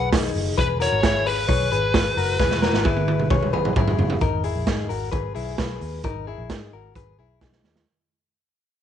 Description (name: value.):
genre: jangly indie pop.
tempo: 132 BPM.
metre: 4/4.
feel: straight.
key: G# minor.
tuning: A4 = 440 Hz.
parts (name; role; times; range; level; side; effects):
biting lead guitar; melody; 0.0-3.7 s; B4 to C#5; -25 LUFS; equal; overdrive, slapback echo.
direct-recorded clean electric guitar; arpeggios; 0.0-7.8 s; D#4 to C#5; -26 LUFS; left 10 dB; slapback echo.
vintage muted picked electric bass; bass; 0.0-7.8 s; E1 to G#2; -28 LUFS; equal; none.
raw garage drum kit; drums; 0.1-7.9 s; hi-hat, kick drum, snare drum, toms; -23 LUFS; right 2 dB; none.
room: light reverb, small room ambience.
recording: 1960s-style stereo, vinyl crackle, nothing above 10.7 kHz.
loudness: -20 LUFS.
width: side -9 dB against mid.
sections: 0.0-4.2 A section; 4.2-7.9 B section.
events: drum fill 2.4-4.2, 7.4-7.9; fade-out 4.2-7.9.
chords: 0.0 G#m; 0.6 E; 4.2 G#madd9.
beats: 0.13 | 0.58 1.03 1.49 1.94 | 2.40 2.85 3.31 3.76 | 4.21 4.67 5.13 5.58 | 6.04 6.50 6.95 7.41.